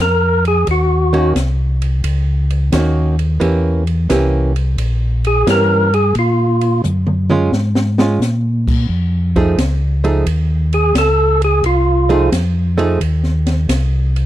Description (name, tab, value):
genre	soul jazz organ trio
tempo	88 BPM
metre	4/4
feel	swing 68% on 8ths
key	unclear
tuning	A4 = 440 Hz
part	percussive tonewheel organ	melody	0.0-12.3 s	F4 to Bb4	-15 LUFS	equal	slow rotary speaker, overdrive
part	mellow tonewheel organ	bass	0.0-14.3 s	Bb1 to Bb2	-15 LUFS	equal	chorus vibrato, slow rotary speaker
part	open jazz drum kit	drums	0.5-14.3 s	crash cymbal, hi-hat, kick drum, ride cymbal, snare drum, toms	-21 LUFS	equal	none
part	archtop guitar, miked and amplified	accompaniment	1.1-13.0 s	Eb3 to G#4	-17 LUFS	right 3 dB	none
room	small room ambience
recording	dry, close 1970s-style studio recording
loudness	-13 LUFS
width	side -13 dB against mid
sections	0.0-14.3 A section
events	tonewheel organ solo 0.0-14.3; drum fill 6.8-8.2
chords	0.0 Ebm7; 3.4 Edim7; 6.2 Bbm7; 8.9 F7#9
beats	| 0.67 1.35 2.04 2.73 | 3.41 4.10 4.79 5.47 | 6.16 6.84 7.53 8.21 | 8.90 9.58 10.27 10.95 | 11.64 12.32 13.01 13.69